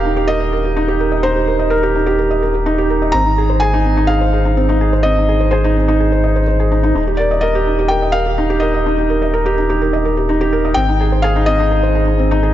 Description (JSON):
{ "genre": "piano and strings electronica", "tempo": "126 BPM", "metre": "4/4", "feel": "straight", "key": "Eb major", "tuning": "A4 = 439 Hz", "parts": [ { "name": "felt-muted upright piano", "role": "melody", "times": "0.0-12.5 s", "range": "Bb4 to Bb5", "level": "-20 LUFS", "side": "left 1 dB", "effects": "tape echo" }, { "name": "felt-muted upright piano", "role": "riff", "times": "0.0-12.5 s", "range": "C4 to Eb5", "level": "-16 LUFS", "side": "right 2 dB", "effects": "tape echo" }, { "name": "warm sub bass", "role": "bass", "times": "0.0-12.5 s", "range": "Eb1 to Ab1", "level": "-17 LUFS", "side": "equal", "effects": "none" } ], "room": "moderate lush hall reverb, RT60 2.9 s", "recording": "dark, warm production, nothing above 7.7 kHz", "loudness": "-13 LUFS", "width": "side -12 dB against mid", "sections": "0.0-12.5 A section", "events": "none", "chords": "0.0 Eb; 3.1 Ab; 7.0 Eb; 10.8 Ab", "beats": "0.28 0.76 | 1.24 1.71 2.19 2.67 | 3.14 3.62 4.09 4.57 | 5.05 5.52 6.00 6.47 | 6.95 7.43 7.90 8.38 | 8.86 9.33 9.81 10.28 | 10.76 11.24 11.71 12.19" }